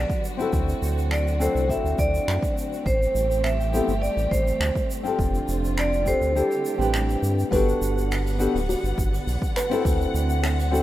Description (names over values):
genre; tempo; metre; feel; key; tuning
sunset chillout; 103 BPM; 4/4; straight; G major; A4 = 440 Hz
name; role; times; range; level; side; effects
vibraphone with hard mallets; melody; 0.0-7.2 s; G4 to E5; -27 LUFS; right 1 dB; ping-pong delay
warm studio string section; sustained chords; 0.0-10.8 s; D3 to F#5; -32 LUFS; equal; none
round analog bass; bass; 0.0-10.8 s; D1 to G2; -25 LUFS; equal; none
electronic kick drum; drums; 0.1-10.0 s; none; -27 LUFS; equal; overdrive
jazz brush drum kit; drums; 0.1-10.8 s; finger snaps, hi-hat, shaker; -34 LUFS; right 1 dB; none
nylon-string guitar; accompaniment; 0.4-10.8 s; B3 to B4; -26 LUFS; moving between left 5 dB and right 3 dB; auto-pan, ping-pong delay
kalimba; arpeggios; 7.5-10.8 s; F#4 to B4; -30 LUFS; right 1 dB; ping-pong delay
room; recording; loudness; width
light reverb, small room ambience; rough home demo mix; -21 LUFS; side -14 dB against mid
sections
0.0-7.5 A section; 7.5-10.8 B section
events
kick drops out 6.4-7.5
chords
0.0 Gmaj7; 0.5 D7; 2.9 Am7; 5.2 F6; 6.4 D7sus4; 7.5 Gmaj7; 9.9 D7